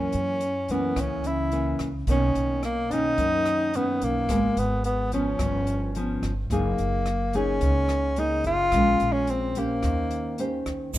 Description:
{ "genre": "bossa nova", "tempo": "108 BPM", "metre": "4/4", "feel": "straight", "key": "unclear", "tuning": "A4 = 440 Hz", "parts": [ { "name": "breathy tenor saxophone", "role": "melody", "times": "0.0-11.0 s", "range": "Bb3 to F4", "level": "-26 LUFS", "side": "equal", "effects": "none" }, { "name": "nylon-string guitar", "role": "accompaniment", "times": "0.0-11.0 s", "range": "Gb2 to C5", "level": "-28 LUFS", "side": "equal", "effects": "none" }, { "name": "upright bass", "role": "bass", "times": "0.0-11.0 s", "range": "Gb1 to Gb2", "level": "-29 LUFS", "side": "equal", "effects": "none" }, { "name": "open jazz drum kit", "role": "drums", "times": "0.1-11.0 s", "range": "hi-hat, kick drum, rim click", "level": "-34 LUFS", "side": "equal", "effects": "none" }, { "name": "tube shaker", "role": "percussion", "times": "10.9-11.0 s", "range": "none", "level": "-28 LUFS", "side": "right 7 dB", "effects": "none" } ], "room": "light reverb", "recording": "minimal, uncompressed stereo recording", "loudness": "-22 LUFS", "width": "side -14 dB against mid", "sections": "0.0-11.0 A section", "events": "none", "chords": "0.0 Gb7; 2.1 Bmaj9; 4.3 Abm9; 5.4 G7#11; 6.5 Gb69; 8.7 Bbm7; 9.8 Eb6", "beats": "0.41 0.97 1.52 | 2.08 2.63 3.18 3.74 | 4.29 4.84 5.40 5.95 | 6.50 7.06 7.61 8.17 | 8.72 9.28 9.83 10.38 | 10.94" }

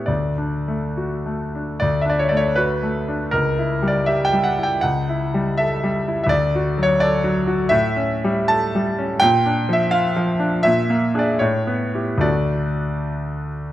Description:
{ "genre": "classical, romantic character piece for solo piano", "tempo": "67-87 BPM", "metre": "2/4", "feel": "rubato", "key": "D major", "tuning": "A4 = 440 Hz", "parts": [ { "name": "bright concert grand piano", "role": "solo", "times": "0.0-13.7 s", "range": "C#2 to A5", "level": "-18 LUFS", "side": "equal", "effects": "none" } ], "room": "light reverb", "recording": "close, detailed microphones", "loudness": "-17 LUFS", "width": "side -13 dB against mid", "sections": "0.0-1.8 A section; 1.8-13.7 A section", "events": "none", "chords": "0.1 D; 3.3 C#dim; 4.8 A7/C#; 6.3 D; 7.7 A7; 9.2 Bb; 10.7 Bb7; 11.4 A9; 12.2 D", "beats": "| 0.09 0.97 | 1.82 2.57 | 3.32 4.08 | 4.83 5.59 | 6.30 7.01 | 7.71 8.50 | 9.22 9.93 | 10.65 11.41 | 12.23 13.08" }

